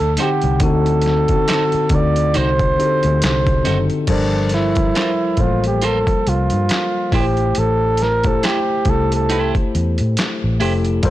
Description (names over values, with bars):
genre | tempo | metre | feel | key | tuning
R&B, neo-soul | 69 BPM | 4/4 | swing 58% on 16ths | G dorian | A4 = 444 Hz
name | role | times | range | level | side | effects
trumpet with bucket mute | melody | 0.0-9.5 s | D4 to D5 | -19 LUFS | right 3 dB | slapback echo
vintage muted fingered electric bass | bass | 0.0-11.1 s | F1 to A2 | -19 LUFS | equal | tube saturation
electric guitar at the edge of break-up | second line | 0.2-10.7 s | Eb4 to C5 | -25 LUFS | right 4 dB | none
mellow tine electric piano | accompaniment | 0.2-11.1 s | D3 to F#5 | -21 LUFS | left 4 dB | none
boom bap sampler-style drum kit | drums | 0.2-11.1 s | crash cymbal, handclaps, hi-hat, kick drum, snare drum | -21 LUFS | equal | overdrive
room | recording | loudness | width
little or no reverb | blown-out, overdriven recording, overdrive | -14 LUFS | side -14 dB against mid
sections
0.0-4.1 A section; 4.1-11.1 B section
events
muted trumpet solo 4.1-11.1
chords
0.0 D7b9; 4.1 Gm11; 7.1 Am7